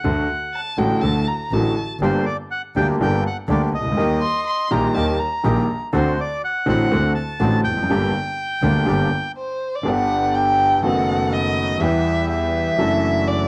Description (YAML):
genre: tango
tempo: 123 BPM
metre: 4/4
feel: rubato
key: G harmonic minor, G major from 9.9 s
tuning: A4 = 440 Hz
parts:
  - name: bandoneon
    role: melody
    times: 0.0-9.3 s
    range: C5 to A5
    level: -28 LUFS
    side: equal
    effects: cassette tape
  - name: clear concert grand piano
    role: accompaniment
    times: 0.0-13.5 s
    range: G1 to G4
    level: -23 LUFS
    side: equal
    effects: cassette tape
  - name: clear double bass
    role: bass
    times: 0.0-13.5 s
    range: F1 to E2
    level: -27 LUFS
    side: equal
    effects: none
  - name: dark violin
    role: second line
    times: 0.5-5.8, 9.4-13.5 s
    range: C5 to C6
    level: -24 LUFS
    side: equal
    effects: cassette tape
  - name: bandoneon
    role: stabs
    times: 2.0-13.5 s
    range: Bb3 to A4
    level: -34 LUFS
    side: equal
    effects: cassette tape
room: moderate spring reverb, RT60 1.3 s, studio reverb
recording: home recording on cassette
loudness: -20 LUFS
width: mono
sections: 0.0-9.9 A section; 9.9-13.5 B section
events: stop 9.4-9.9; violin solo 9.9-13.5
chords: 0.0 D; 2.0 Gm; 4.0 Eb; 5.9 D7; 7.9 Gm; 9.9 G; 10.8 B7/F#; 11.8 Em; 12.8 Dadd9/F#